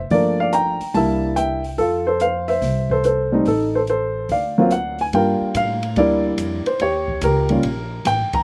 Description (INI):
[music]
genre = jazz piano trio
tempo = 143 BPM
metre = 4/4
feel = swing 67% on 8ths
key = unclear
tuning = A4 = 440 Hz
[part]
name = upright bass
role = bass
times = 0.0-8.4 s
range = Eb1 to A2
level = -28 LUFS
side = equal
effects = none
[part]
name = dark grand piano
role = melody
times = 0.1-8.4 s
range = F3 to Bb5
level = -20 LUFS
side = equal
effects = none
[part]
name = open jazz drum kit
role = drums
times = 0.1-8.4 s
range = hi-hat, kick drum, ride cymbal, snare drum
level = -36 LUFS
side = equal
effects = none
[sound]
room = little or no reverb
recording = recorded outdoors, with no room sound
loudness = -20 LUFS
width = mono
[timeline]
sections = 0.0-5.1 A section; 5.1-8.4 B section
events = none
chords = 0.1 Gm7; 0.9 C9; 1.8 Fmaj7; 3.5 Adim; 4.3 D(#9); 5.1 Gm9; 6.8 Eb7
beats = | 0.11 0.53 0.94 1.36 | 1.78 2.20 2.62 3.04 | 3.46 3.88 4.29 4.71 | 5.13 5.55 5.97 6.38 | 6.80 7.22 7.64 8.05